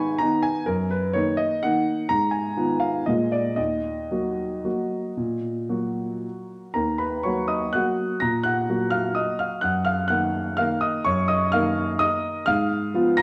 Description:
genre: classical, piano waltz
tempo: 110-135 BPM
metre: 3/4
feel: rubato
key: Eb minor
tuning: A4 = 441 Hz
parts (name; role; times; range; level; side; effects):
- warm grand piano; solo; 0.0-13.2 s; Eb2 to Bb6; -24 LUFS; equal; none
room: wet recital hall reverb, RT60 1.4 s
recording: none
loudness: -24 LUFS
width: mono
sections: 0.0-6.8 A section; 6.8-13.2 A section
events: none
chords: 0.0 Abm; 0.7 Ebm/Gb; 2.1 Fm7b5/Ab; 3.1 Bb7; 3.6 Ebm; 9.6 Ebm/Gb; 12.5 Fdim/Ab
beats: 0.20 | 0.68 1.14 1.62 | 2.10 2.56 3.07 | 3.58 4.11 4.65 | 5.18 5.70 6.24 | 6.76 7.24 7.75 | 8.22 8.69 9.18 | 9.64 10.11 10.60 | 11.07 11.53 12.01 | 12.49 12.95

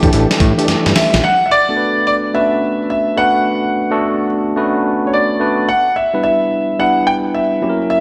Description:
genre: R&B, new jack swing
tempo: 108 BPM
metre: 4/4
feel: swing 65% on 16ths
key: B minor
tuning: A4 = 440 Hz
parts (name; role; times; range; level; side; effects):
- tine electric piano; accompaniment; 0.0-8.0 s; E3 to B4; -19 LUFS; equal; slapback echo
- tonewheel organ; stabs; 0.0-0.7 s; D4 to A4; -24 LUFS; equal; chorus vibrato, slow rotary speaker
- fat analog bass; bass; 0.0-1.2 s; A1 to A2; -18 LUFS; equal; none
- dusty soul sampler-style drum kit; drums; 0.0-1.2 s; hi-hat, kick drum, snare drum; -17 LUFS; equal; none
- warm concert grand piano; melody; 1.0-8.0 s; C#5 to G5; -17 LUFS; equal; slapback echo, delay
room: moderate lush hall reverb, RT60 1.9 s, digital ambience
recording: big arena sound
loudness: -15 LUFS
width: mono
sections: 0.0-1.2 A section; 1.2-8.0 B section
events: drum fill 0.7-1.2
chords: 0.0 A7sus4; 1.2 Bm7; 5.7 Em7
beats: 0.12 0.68 | 1.24 1.79 2.35 2.90 | 3.46 4.01 4.57 5.12 | 5.68 6.24 6.79 7.35 | 7.90

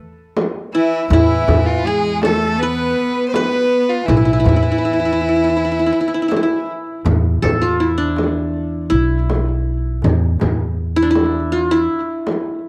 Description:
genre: Arabic maqam ensemble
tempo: 81 BPM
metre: 4/4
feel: straight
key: E maqam hijaz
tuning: A4 = 440 Hz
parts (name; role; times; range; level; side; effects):
- qanun; melody; 0.0-12.7 s; D4 to B4; -21 LUFS; equal; cassette tape, plate reverb, analog delay
- darbuka; percussion; 0.0-12.5 s; none; -26 LUFS; equal; none
- frame drum; percussion; 0.4-12.4 s; none; -24 LUFS; equal; none
- clear violin; second line; 0.7-6.7 s; E4 to C5; -23 LUFS; equal; plate reverb
- warm cello; second line; 0.7-6.6 s; E3 to B3; -25 LUFS; equal; plate reverb
- upright bass; bass; 1.1-11.9 s; B1 to E2; -21 LUFS; equal; none
room: moderate small room ambience, RT60 0.5 s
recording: home recording on cassette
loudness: -17 LUFS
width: mono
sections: 0.0-7.1 A section; 7.1-12.7 B section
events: none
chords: none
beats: 0.37 | 1.11 1.86 2.60 3.35 | 4.09 4.83 5.58 6.32 | 7.06 7.81 8.55 9.30 | 10.04 10.78 11.53 12.27

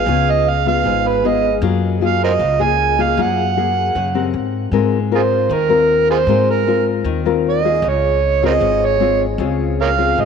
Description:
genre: bossa nova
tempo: 154 BPM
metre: 4/4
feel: straight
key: Ab mixolydian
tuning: A4 = 440 Hz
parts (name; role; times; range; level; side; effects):
- overdriven harmonica; melody; 0.0-10.3 s; F4 to Ab5; -17 LUFS; right 7 dB; none
- nylon-string guitar; accompaniment; 0.0-10.3 s; Ab2 to Bb4; -18 LUFS; left 10 dB; none
- upright bass; bass; 0.0-10.3 s; Ab1 to Ab2; -21 LUFS; left 1 dB; none
room: moderate plate reverb, RT60 2.8 s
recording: 1960s-style stereo with parts hard left and right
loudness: -14 LUFS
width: side -6 dB against mid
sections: 0.0-4.7 A section; 4.7-10.3 B section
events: harmonica solo 4.7-10.3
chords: 0.0 Db7; 1.6 Gbmaj9; 4.3 Abmaj9; 4.7 Ab69; 7.8 Dbmaj7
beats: | 0.07 0.46 0.85 1.24 | 1.62 2.01 2.40 2.79 | 3.18 3.56 3.95 4.34 | 4.73 5.12 5.51 5.90 | 6.29 6.67 7.06 7.45 | 7.84 8.23 8.61 9.00 | 9.39 9.78 10.17

